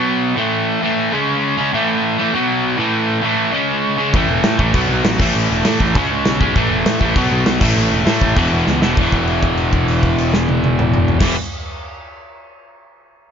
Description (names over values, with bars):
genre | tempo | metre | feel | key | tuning
punk rock | 199 BPM | 4/4 | straight | E major | A4 = 444 Hz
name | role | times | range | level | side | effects
distorted electric guitar | riff | 0.0-11.4 s | E2 to C#4 | -16 LUFS | equal | distortion
fuzz picked electric bass | bass | 4.1-11.3 s | E1 to A2 | -20 LUFS | equal | overdrive
loose indie drum kit | drums | 4.1-11.3 s | crash cymbal, kick drum, snare drum, toms | -18 LUFS | equal | none
room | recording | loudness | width
little or no reverb | nothing above 7.4 kHz | -14 LUFS | side -7 dB against mid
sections
0.0-9.0 A section; 9.0-11.4 B section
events
drum fill 8.7-9.0; held note 9.0-11.2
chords
0.4 A5; 1.1 C#5; 1.7 A5; 2.3 B5; 2.8 A5; 3.5 C#5; 4.1 A5; 4.7 B5; 5.2 A5; 6.0 C#5; 6.6 A5; 7.2 B5; 7.6 A5; 8.4 E5